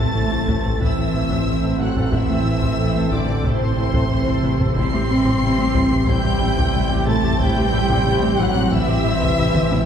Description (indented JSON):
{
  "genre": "cinematic, hybrid orchestral and electronic film score",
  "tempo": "91 BPM",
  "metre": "4/4",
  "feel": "straight",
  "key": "A dorian",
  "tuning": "A4 = 443 Hz",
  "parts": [
    { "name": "warm symphonic violin section", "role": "melody", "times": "0.0-9.9 s", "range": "C6 to C7", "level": "-29 LUFS", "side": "left 2 dB", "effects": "none" },
    { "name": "dark symphonic violin section", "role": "second line", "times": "0.0-9.9 s", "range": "C5 to C6", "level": "-27 LUFS", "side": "left 1 dB", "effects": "none" },
    { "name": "rich studio viola section", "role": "accompaniment", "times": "0.0-9.9 s", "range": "G3 to A4", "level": "-29 LUFS", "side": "right 1 dB", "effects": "none" },
    { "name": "clear trombone section", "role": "sustained chords", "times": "0.0-9.9 s", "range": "E3 to C4", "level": "-31 LUFS", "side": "right 3 dB", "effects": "none" },
    { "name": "dark French horn section", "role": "sustained chords", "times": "0.0-9.9 s", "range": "C3 to C4", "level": "-26 LUFS", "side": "left 2 dB", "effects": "none" },
    { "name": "deep dark ambient pad", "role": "sustained chords", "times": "0.0-9.9 s", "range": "E3 to C5", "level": "-28 LUFS", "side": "right 2 dB", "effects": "chorus, built-in reverb" },
    { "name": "thumb-piano-like synth pluck", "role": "arpeggios", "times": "0.0-9.8 s", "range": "C3 to A4", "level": "-29 LUFS", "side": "left 2 dB", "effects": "none" },
    { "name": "round analog bass", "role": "riff", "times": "0.0-9.8 s", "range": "A2 to A3", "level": "-24 LUFS", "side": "left 2 dB", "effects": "none" },
    { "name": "clear symphonic double bass section", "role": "bass", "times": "0.0-9.9 s", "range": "A1", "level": "-27 LUFS", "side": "right 4 dB", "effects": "none" },
    { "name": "punchy sub bass", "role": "bass", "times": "0.0-9.9 s", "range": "A1", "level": "-28 LUFS", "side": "equal", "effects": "none" },
    { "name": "rich symphonic cello section", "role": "bass", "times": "0.0-9.9 s", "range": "C3 to C4", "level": "-26 LUFS", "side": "right 2 dB", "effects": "none" },
    { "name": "impact", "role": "sound effects", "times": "0.0-2.1 s", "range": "none", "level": "-31 LUFS", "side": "equal", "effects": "none" },
    { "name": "taiko ensemble", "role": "drums", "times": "0.5-9.9 s", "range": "none", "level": "-26 LUFS", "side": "equal", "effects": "none" }
  ],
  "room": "wet concert hall reverb, RT60 2.1 s",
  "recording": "heard from further back in the room",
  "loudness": "-16 LUFS",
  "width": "side -8 dB against mid",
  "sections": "0.0-9.9 A section",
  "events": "impact 0.0-2.1; drum fill 9.4-9.9",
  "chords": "0.0 Am; 4.8 C/A"
}